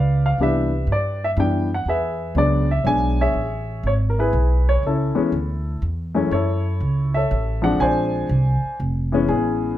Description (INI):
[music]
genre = jazz piano trio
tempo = 121 BPM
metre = 3/4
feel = swing 66% on 8ths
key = A major, F# minor from 6.3 s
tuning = A4 = 440 Hz
[part]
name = warm baby grand piano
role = melody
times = 0.0-9.8 s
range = F#2 to G#5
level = -21 LUFS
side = left 2 dB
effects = plate reverb
[part]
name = upright bass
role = bass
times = 0.0-9.8 s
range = E#1 to G2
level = -21 LUFS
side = right 1 dB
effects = none
[sound]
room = light reverb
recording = none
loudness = -18 LUFS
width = side -13 dB against mid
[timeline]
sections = 0.0-6.3 A section; 6.3-9.8 B section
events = none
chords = 0.4 Cmaj7; 1.9 E7; 3.3 Amaj9; 6.3 F#m7; 7.8 A#9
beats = | 0.38 0.87 1.37 | 1.86 2.36 2.85 | 3.35 3.84 4.34 | 4.83 5.33 5.82 | 6.32 6.81 7.31 | 7.80 8.30 8.79 | 9.29